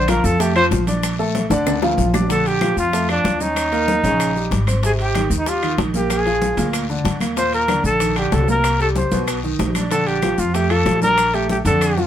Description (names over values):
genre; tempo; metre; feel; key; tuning
Afro-Cuban jazz; 189 BPM; 4/4; straight; Bb major; A4 = 440 Hz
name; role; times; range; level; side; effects
mellow trumpet; melody; 0.0-12.1 s; D4 to C5; -19 LUFS; equal; none
warm concert grand piano; accompaniment; 0.0-12.1 s; Bb2 to D6; -23 LUFS; left 1 dB; none
upright bass; bass; 0.0-12.1 s; Ab1 to F2; -21 LUFS; equal; none
bongos; percussion; 0.1-12.1 s; none; -29 LUFS; left 6 dB; none
claves; percussion; 0.1-12.0 s; none; -32 LUFS; left 7 dB; none
congas; percussion; 0.1-12.0 s; none; -27 LUFS; left 2 dB; none
guiro; percussion; 0.1-12.1 s; none; -35 LUFS; left 6 dB; none
maracas; percussion; 0.1-12.1 s; none; -34 LUFS; right 5 dB; none
timbales; percussion; 0.1-12.0 s; none; -30 LUFS; right 3 dB; none
room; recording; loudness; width
moderate studio reverb, RT60 0.8 s; band playing live in one room; -16 LUFS; side -10 dB against mid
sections
0.0-2.3 A section; 2.3-12.1 B section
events
trumpet solo 0.0-2.3; drum fill 1.5-2.3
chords
0.0 Bbmaj7; 2.3 Bb6; 3.6 Eb7; 4.8 Abmaj9; 6.1 Bb7; 7.4 Eb5; 8.6 C5; 9.3 B; 9.9 Bb6